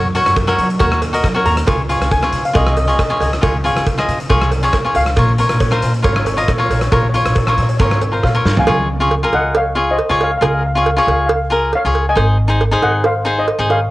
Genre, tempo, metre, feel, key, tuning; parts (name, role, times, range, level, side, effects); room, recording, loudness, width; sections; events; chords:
calypso; 137 BPM; 4/4; straight; Db major; A4 = 439 Hz
cavaquinho; accompaniment; 0.0-13.8 s; Eb4 to Eb5; -17 LUFS; left 1 dB
upright bass; bass; 0.0-13.9 s; Ab1 to Gb3; -18 LUFS; equal
big rock drum kit; drums; 0.1-8.7 s; hi-hat, kick drum, rim click, snare drum, toms; -19 LUFS; equal
cowbell; percussion; 0.4-13.8 s; -21 LUFS; right 4 dB
steel pan; melody; 1.5-13.9 s; C5 to Bb5; -20 LUFS; left 1 dB; cassette tape
light reverb, small room ambience; home recording on cassette; -12 LUFS; side -18 dB against mid
0.0-8.7 A section; 8.7-13.9 B section
drum fill 8.5
0.0 Gb; 1.7 Dbadd9; 5.2 Bbm; 8.7 Db; 12.2 Ab